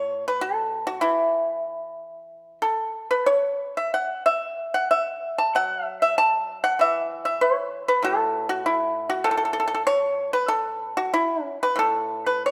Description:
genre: chinese traditional, Chinese solo plucked strings.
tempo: 90-100 BPM.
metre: 4/4.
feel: rubato.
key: A gong mode.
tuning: A4 = 441 Hz.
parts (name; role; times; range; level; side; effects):
pipa; solo; 0.0-12.5 s; A2 to A5; -24 LUFS; equal; none.
room: moderate scoring stage reverb, RT60 1.8 s.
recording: none.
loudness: -24 LUFS.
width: mono.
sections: 0.0-12.5 A section.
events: none.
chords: none.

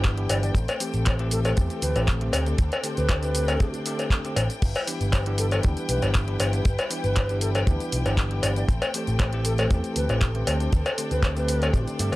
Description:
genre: nu-disco, nu disco.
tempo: 118 BPM.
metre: 4/4.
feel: straight.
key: G major.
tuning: A4 = 445 Hz.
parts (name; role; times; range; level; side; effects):
bell-like tine electric piano; accompaniment; 0.0-12.2 s; D3 to G4; -31 LUFS; equal; fast stereo tremolo.
rich symphonic string section; sustained chords; 0.0-12.2 s; G3 to G5; -34 LUFS; left 1 dB; sidechain pumping.
picked electric bass with an envelope filter; bass; 0.0-12.2 s; G1 to G2; -26 LUFS; equal; transformer saturation.
kick drum; drums; 0.0-11.8 s; none; -22 LUFS; equal; none.
pop drum kit; drums; 0.0-12.2 s; crash cymbal, handclaps, hi-hat, shaker; -31 LUFS; equal; overdrive.
breathy mellow concert flute; melody; 0.3-11.9 s; A4 to D5; -33 LUFS; equal; tape echo.
cowbell; percussion; 0.3-12.2 s; none; -29 LUFS; left 2 dB; none.
room: small room ambience.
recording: dry, gritty hardware recording, transformer saturation, cassette tape.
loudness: -22 LUFS.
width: side -18 dB against mid.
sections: 0.0-12.2 A section.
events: none.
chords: 0.0 G6; 0.6 Am7; 2.3 D7sus4; 4.6 G6; 8.7 Am7; 10.5 D7sus4.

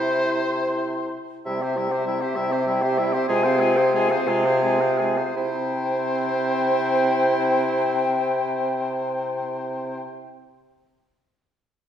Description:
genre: quick classical-period movement for wind quintet.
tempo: 54-67 BPM (dotted quarters).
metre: 6/8.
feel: straight.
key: C major.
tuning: A4 = 440 Hz.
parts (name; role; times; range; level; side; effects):
hollow concert flute; melody; 0.0-10.0 s; E5 to C6; -28 LUFS; left 5 dB; none.
bright oboe; second line; 0.0-10.0 s; Ab4 to E5; -29 LUFS; left 1 dB; none.
clear French horn; accompaniment; 0.0-10.0 s; G3 to E4; -30 LUFS; right 1 dB; none.
clear clarinet; accompaniment; 0.0-10.0 s; E4 to Ab4; -32 LUFS; right 4 dB; none.
mellow bassoon; bass; 0.0-10.0 s; C3; -23 LUFS; right 1 dB; none.
room: wet scoring stage reverb, RT60 1.5 s.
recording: heard from further back in the room.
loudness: -20 LUFS.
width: side -9 dB against mid.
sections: 0.0-1.5 A section; 1.5-5.4 B section; 5.4-9.7 C section.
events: slowing down 0.5-5.4.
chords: 0.0 C; 3.3 Fm/C; 5.4 C.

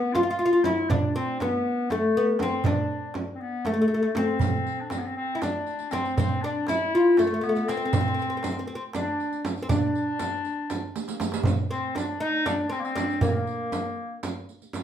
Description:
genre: Turkish makam ensemble.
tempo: 239 BPM (eighths).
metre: 7/8.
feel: straight.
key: D makam huseyni.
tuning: A4 = 441 Hz.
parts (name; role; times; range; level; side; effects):
oud; melody; 0.0-14.2 s; A3 to F4; -26 LUFS; left 1 dB; plate reverb.
bright clarinet; second line; 0.0-14.2 s; A3 to F4; -30 LUFS; left 2 dB; none.
frame drum; percussion; 0.1-14.8 s; none; -30 LUFS; right 2 dB; none.
darbuka; percussion; 0.2-14.8 s; none; -30 LUFS; right 3 dB; none.
riq; percussion; 4.4-14.8 s; none; -37 LUFS; right 5 dB; none.
room: wet studio reverb, RT60 0.6 s.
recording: heard from further back in the room.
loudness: -23 LUFS.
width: side -9 dB against mid.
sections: 0.0-11.5 A section; 11.5-14.8 B section.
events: drum fill 11.0-11.5.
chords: none.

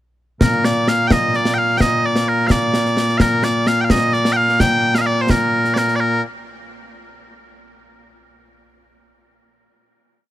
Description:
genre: scottish traditional, Scottish pipe music.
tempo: 86 BPM (dotted quarters).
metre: 6/8.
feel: straight.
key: Bb major.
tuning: A4 = 440 Hz.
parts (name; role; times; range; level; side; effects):
loud bright bagpipes; melody; 0.4-6.2 s; Bb2 to G5; -16 LUFS; equal; none.
concert snare drum and concert bass drum; drums; 0.4-5.9 s; none; -19 LUFS; equal; none.
room: little or no reverb.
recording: faint mains hum.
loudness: -14 LUFS.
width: side -13 dB against mid.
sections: 0.4-6.0 A section; 6.0-7.4 final note.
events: none.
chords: none.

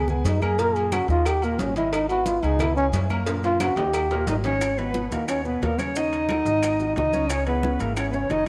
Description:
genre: Afro-Cuban jazz.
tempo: 179 BPM.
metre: 4/4.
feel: straight.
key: G# minor.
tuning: A4 = 440 Hz.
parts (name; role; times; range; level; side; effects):
breathy trombone; melody; 0.0-8.5 s; A#3 to A#4; -26 LUFS; equal; none.
warm baby grand piano; accompaniment; 0.0-8.4 s; A#2 to B5; -34 LUFS; equal; none.
upright bass; bass; 0.0-8.5 s; F#1 to F#2; -30 LUFS; equal; none.
congas; percussion; 0.1-8.5 s; none; -36 LUFS; equal; none.
maracas; percussion; 0.1-8.5 s; none; -44 LUFS; equal; none.
cowbell and bongos; percussion; 0.3-8.5 s; none; -37 LUFS; equal; none.
timbales and agogo bells; percussion; 0.3-8.5 s; none; -37 LUFS; equal; none.
claves; percussion; 0.4-8.1 s; none; -40 LUFS; equal; none.
breathy bright jazz flute; second line; 4.3-8.5 s; A#4 to D#5; -33 LUFS; equal; none.
room: moderate plate reverb, RT60 2.3 s.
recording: none.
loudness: -23 LUFS.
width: mono.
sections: 0.0-4.6 A section; 4.6-8.5 B section.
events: trombone solo 0.0-4.6; drum fill 3.3-4.6.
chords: 0.0 C#5; 0.6 F#; 1.3 D#5; 1.9 G#m; 2.6 C#5; 3.3 F#; 3.9 D#; 4.6 G#m7; 6.0 D#m7b5; 6.6 G#5; 7.3 C#m7.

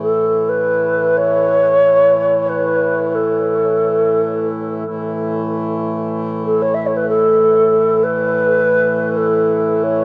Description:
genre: world meditative, free-time meditation music.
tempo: free time.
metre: none.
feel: none.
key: A major pentatonic.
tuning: A4 = 441 Hz.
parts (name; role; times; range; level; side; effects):
wooden-headed alto flute; melody; 0.0-10.0 s; A4 to E5; -16 LUFS; equal; diffuse ambient delay.
pedal harmonium; drone; 0.0-10.0 s; A2 to E3; -24 LUFS; equal; none.
room: wet huge ambient reverb, RT60 6.8 s.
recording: worn, warbling old tape, cassette tape, warbly pitch drift.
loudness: -16 LUFS.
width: mono.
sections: 0.0-10.0 A section.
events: none.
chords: none.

